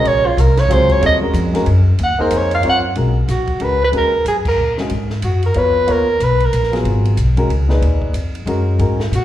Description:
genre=modal jazz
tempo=185 BPM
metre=3/4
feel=swing 62% on 8ths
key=G# dorian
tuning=A4 = 440 Hz
part: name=breathy soprano saxophone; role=melody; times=0.0-6.7, 9.2 s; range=E#4 to F#5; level=-16 LUFS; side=right 1 dB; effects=slapback echo
part: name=dark grand piano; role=accompaniment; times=0.0-9.0 s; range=A#2 to C#5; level=-21 LUFS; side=left 2 dB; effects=slapback echo
part: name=upright bass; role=bass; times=0.0-9.2 s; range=G#1 to A#2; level=-16 LUFS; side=equal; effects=none
part: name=compact cocktail drum kit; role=drums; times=0.1-9.2 s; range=crash cymbal, hi-hat, kick drum, ride cymbal, snare drum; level=-29 LUFS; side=equal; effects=none
room=light reverb, studio ambience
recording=live gig heard through the venue's PA, club reverb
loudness=-13 LUFS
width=side -12 dB against mid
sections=0.0-3.0 A section; 3.0-9.2 B section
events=soprano saxophone solo 0.0-3.0; band accent 4.4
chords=0.0 D#m9; 3.0 G#m9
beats=| 0.04 0.37 0.69 | 1.01 1.34 1.66 | 1.98 2.31 2.63 | 2.95 3.28 3.60 | 3.93 4.25 4.58 | 4.90 5.22 5.55 | 5.87 6.20 6.52 | 6.85 7.17 7.50 | 7.82 8.14 8.47 | 8.79 9.12

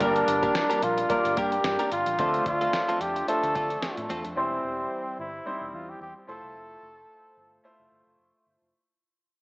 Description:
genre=1980s-style pop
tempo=110 BPM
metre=4/4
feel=swing 55% on 16ths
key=G dorian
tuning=A4 = 439 Hz
part: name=warm flugelhorn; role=melody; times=0.0-8.2 s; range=C4 to A4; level=-28 LUFS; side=equal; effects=cassette tape
part: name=bright concert grand piano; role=accompaniment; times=0.0-8.8 s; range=G2 to C5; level=-29 LUFS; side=equal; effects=cassette tape
part: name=direct-recorded clean electric guitar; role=riff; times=0.0-4.3 s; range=A3 to Bb4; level=-33 LUFS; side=equal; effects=analog chorus, cassette tape, analog delay
part: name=analog synth brass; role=stabs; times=0.0-8.7 s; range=F3 to C5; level=-36 LUFS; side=equal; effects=none
part: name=vintage muted fingered electric bass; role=bass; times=0.0-8.7 s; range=E1 to D3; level=-40 LUFS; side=equal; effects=none
part: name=dusty soul sampler-style drum kit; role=drums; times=0.0-4.4 s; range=hi-hat, kick drum, snare drum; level=-34 LUFS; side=equal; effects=none
room=wet spring reverb, RT60 2.4 s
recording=home recording on cassette, small speaker sound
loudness=-24 LUFS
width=side -36 dB against mid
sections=0.0-8.7 A section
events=fade-out 0.0-8.7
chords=0.0 Gm; 2.2 Dm7; 4.4 C/E; 6.3 Fmaj7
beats=| 0.01 0.55 1.10 1.64 | 2.19 2.73 3.28 3.83 | 4.37 4.92 5.46 6.01 | 6.55 7.10 7.64 8.19

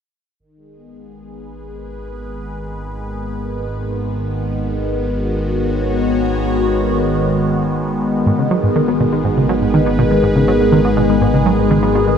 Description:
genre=ambient, sequencer-driven space music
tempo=122 BPM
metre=4/4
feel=straight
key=G# minor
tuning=A4 = 435 Hz
part: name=phased analog pad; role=sustained chords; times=1.4-12.2 s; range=D#3 to C#5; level=-17 LUFS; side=left 1 dB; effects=phaser, chorus
part: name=fat analog bass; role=bass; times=0.4-12.2 s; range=G#1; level=-23 LUFS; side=right 1 dB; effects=tube saturation
part: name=tight sequenced synth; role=riff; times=8.3-12.2 s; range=G#2 to B3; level=-16 LUFS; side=right 1 dB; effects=chorus, tape echo
room=moderate plate reverb, RT60 3.4 s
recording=none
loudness=-14 LUFS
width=side -7 dB against mid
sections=0.4-8.3 A section; 8.3-12.2 B section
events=fade-in on analog synth pad 0.4-8.3; fade-in on analog synth bass 0.4-8.3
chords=0.4 G#m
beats=| 0.40 0.89 1.38 1.87 | 2.36 2.85 3.35 3.84 | 4.33 4.82 5.31 5.81 | 6.30 6.79 7.28 7.77 | 8.27 8.76 9.25 9.74 | 10.23 10.72 11.22 11.71

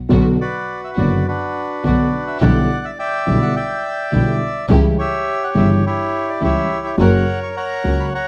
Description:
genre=tango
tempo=105 BPM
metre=4/4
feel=rubato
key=B harmonic minor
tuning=A4 = 441 Hz
part: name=dark concert grand piano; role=accompaniment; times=0.1-8.1 s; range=F#1 to F#4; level=-20 LUFS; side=equal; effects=none
part: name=warm symphonic string section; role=stabs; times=0.1-8.1 s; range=B3 to A#4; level=-31 LUFS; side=equal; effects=none
part: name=bright double bass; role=bass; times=0.1-8.1 s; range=F#1 to C#2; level=-21 LUFS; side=equal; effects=none
part: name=bandoneon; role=melody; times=0.4-8.3 s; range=D4 to C#6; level=-23 LUFS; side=equal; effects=none
room=light reverb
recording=close, detailed microphones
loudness=-18 LUFS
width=mono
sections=0.1-8.3 A section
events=none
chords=0.1 Bm; 2.4 Em7/B; 4.7 C#dim; 7.0 F#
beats=| 0.11 0.69 1.27 1.84 | 2.41 2.98 3.55 4.12 | 4.70 5.27 5.84 6.41 | 6.98 7.55 8.13

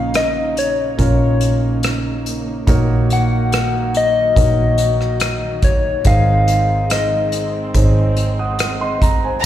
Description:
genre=pop ballad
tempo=71 BPM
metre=4/4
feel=straight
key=unclear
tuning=A4 = 441 Hz
part: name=soft struck synth lead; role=melody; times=0.0-7.7 s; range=Db5 to Gb5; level=-19 LUFS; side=left 4 dB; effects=chorus, slapback echo, ping-pong delay
part: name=warm concert grand piano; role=accompaniment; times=0.0-9.5 s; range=Ab2 to Eb6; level=-22 LUFS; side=right 2 dB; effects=slapback echo
part: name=muted studio string section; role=sustained chords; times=0.0-9.4 s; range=Db3 to Eb4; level=-27 LUFS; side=right 2 dB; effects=none
part: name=vintage muted fingered electric bass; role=bass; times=0.0-9.4 s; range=Ab1 to Bb1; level=-18 LUFS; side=equal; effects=none
part: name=unplugged drum kit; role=drums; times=0.1-9.2 s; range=hi-hat, kick drum, rim click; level=-19 LUFS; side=equal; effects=none
room=light reverb, small room reverb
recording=live gig heard through the venue's PA, recital hall reverb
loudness=-14 LUFS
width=side -12 dB against mid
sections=0.0-9.4 A section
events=none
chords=0.0 Bbm; 2.7 Gb6/Bb; 6.1 Ab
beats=0.14 0.98 1.83 | 2.67 3.52 4.37 5.21 | 6.06 6.90 7.75 8.59 | 9.44

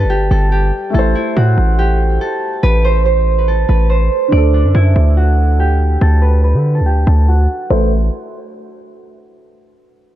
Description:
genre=hip hop, trap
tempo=142 BPM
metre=4/4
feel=half-time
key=A dorian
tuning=A4 = 440 Hz
part: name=concert harp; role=melody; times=0.0-7.9 s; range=D4 to D5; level=-18 LUFS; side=right 2 dB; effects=low-pass filter, digital delay
part: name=dark grand piano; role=accompaniment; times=0.0-7.9 s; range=D3 to D5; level=-22 LUFS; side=equal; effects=low-pass filter
part: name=hard-hitting 808-style bass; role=bass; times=0.0-8.1 s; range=G1 to D3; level=-12 LUFS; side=equal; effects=none
room=small room ambience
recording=dark, warm production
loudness=-11 LUFS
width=side -13 dB against mid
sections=0.9-7.7 A section; 7.7-9.4 B section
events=filter sweep 0.9-7.7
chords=0.0 G; 0.9 Am; 4.3 D; 7.7 N.C.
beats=0.10 0.52 | 0.94 1.37 1.79 2.21 | 2.63 3.06 3.48 3.90 | 4.32 4.75 5.17 5.59 | 6.01 6.44 6.86 7.28 | 7.70

